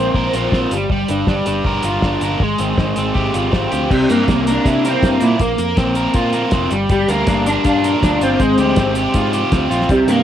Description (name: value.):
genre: indie rock.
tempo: 160 BPM.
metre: 4/4.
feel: straight.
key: unclear.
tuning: A4 = 440 Hz.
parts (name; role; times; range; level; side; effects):
electric guitar through a small old amp; melody; 0.0-0.7, 3.9-10.2 s; G3 to C5; -18 LUFS; left 1 dB; ensemble chorus.
crunchy overdriven guitar; riff; 0.0-10.2 s; C3 to Bb4; -17 LUFS; equal; cassette tape.
picked electric bass; bass; 0.0-10.2 s; F1 to C3; -22 LUFS; equal; none.
cloth-damped thuddy drum kit; drums; 0.1-10.2 s; crash cymbal, hi-hat, kick drum, snare drum; -20 LUFS; equal; cassette tape.
room: studio reverb.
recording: home recording on cassette.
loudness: -14 LUFS.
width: side -10 dB against mid.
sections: 0.0-3.9 A section; 3.9-10.2 B section.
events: none.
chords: 0.0 Bbsus2; 0.7 Gm7; 2.4 Fmadd9/Ab; 3.9 C7; 5.4 Bbsus2; 6.7 Gm7; 8.4 Fmadd9/Ab.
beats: 0.14 0.52 | 0.90 1.27 1.65 2.03 | 2.40 2.78 3.15 3.53 | 3.91 4.28 4.66 5.03 | 5.40 5.78 6.15 6.53 | 6.90 7.28 7.65 8.02 | 8.40 8.77 9.14 9.52 | 9.89.